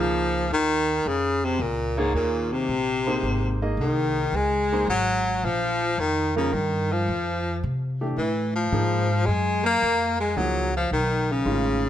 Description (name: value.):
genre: jazz, small-group swing and bop.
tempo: 110 BPM.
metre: 4/4.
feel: swing 69% on 8ths.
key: Bb minor.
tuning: A4 = 438 Hz.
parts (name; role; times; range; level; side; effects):
bright baritone saxophone; melody; 0.0-11.9 s; Ab2 to Bb3; -24 LUFS; left 2 dB; none.
clear baritone saxophone; second line; 0.0-11.9 s; Ab2 to Bb3; -31 LUFS; right 5 dB; none.
clear grand piano; accompaniment; 0.0-11.9 s; D#3 to Eb5; -29 LUFS; right 2 dB; none.
upright bass; bass; 0.0-11.9 s; Ab1 to C3; -28 LUFS; equal; none.
room: light reverb.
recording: none.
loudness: -22 LUFS.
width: side -11 dB against mid.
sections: 0.0-11.9 A section.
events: none.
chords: 0.0 Bbm7; 2.1 Eb5; 3.2 Ab; 4.3 Db6; 6.5 Ebadd9; 7.6 C; 8.7 Fm7; 10.9 B9.